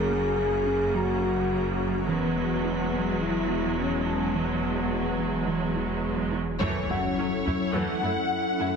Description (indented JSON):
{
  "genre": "cinematic, hybrid orchestral and electronic film score",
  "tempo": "106 BPM",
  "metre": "4/4",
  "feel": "straight",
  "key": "unclear",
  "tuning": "A4 = 440 Hz",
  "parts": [
    { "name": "clear symphonic viola section", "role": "accompaniment", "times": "0.0-8.7 s", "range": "C#3 to E4", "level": "-32 LUFS", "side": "right 3 dB", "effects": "none" },
    { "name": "soft additive organ-like pad", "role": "sustained chords", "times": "0.0-8.8 s", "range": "F#3 to A#4", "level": "-31 LUFS", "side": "equal", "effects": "ensemble chorus, built-in reverb" },
    { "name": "warm French horn section", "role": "sustained chords", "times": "0.0-6.3 s", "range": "B3 to G#4", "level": "-29 LUFS", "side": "left 4 dB", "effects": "none" },
    { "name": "punchy sub bass", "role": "bass", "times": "0.0-6.6 s", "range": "E1 to F#1", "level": "-37 LUFS", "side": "equal", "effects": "none" },
    { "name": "rich symphonic cello section", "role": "bass", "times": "0.0-8.7 s", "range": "E2 to F#2", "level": "-31 LUFS", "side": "right 4 dB", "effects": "none" },
    { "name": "warm concert grand piano", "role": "texture", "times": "0.0-8.8 s", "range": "F#4 to A#5", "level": "-40 LUFS", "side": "left 2 dB", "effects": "none" },
    { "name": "warbly dusty pluck", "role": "arpeggios", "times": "0.1-8.8 s", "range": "E3 to F#4", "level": "-36 LUFS", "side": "right 2 dB", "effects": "none" },
    { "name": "warm symphonic violin section", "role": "melody", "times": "6.6-8.8 s", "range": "C#5 to F#5", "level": "-30 LUFS", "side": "left 4 dB", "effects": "none" },
    { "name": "taiko ensemble", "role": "drums", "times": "6.6-7.7 s", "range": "none", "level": "-37 LUFS", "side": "equal", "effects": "none" },
    { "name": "impact", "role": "sound effects", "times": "6.6-8.8 s", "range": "none", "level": "-38 LUFS", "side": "equal", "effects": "none" }
  ],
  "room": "wet concert hall reverb, RT60 2.0 s",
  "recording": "heavily compressed radio sound, multiband compression",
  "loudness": "-24 LUFS",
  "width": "side -6 dB against mid",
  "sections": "0.0-6.6 A section; 6.6-8.8 A section",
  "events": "band accent 6.6-7.2; impact 6.6-8.8",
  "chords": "0.0 F#; 2.1 Eadd9; 6.6 F#m7"
}